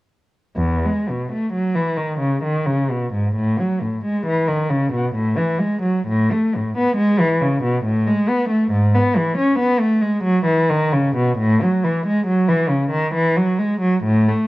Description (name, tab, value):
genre	classical, baroque-style suite movement for unaccompanied cello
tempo	67 BPM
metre	3/4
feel	rubato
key	E major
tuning	A4 = 440 Hz
part	warm cello	solo	0.6-14.5 s	E2 to C#4	-16 LUFS	equal	none
room	light reverb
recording	worn, warbling old tape, cassette tape, warbly pitch drift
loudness	-16 LUFS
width	side -18 dB against mid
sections	0.6-14.5 A section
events	none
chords	none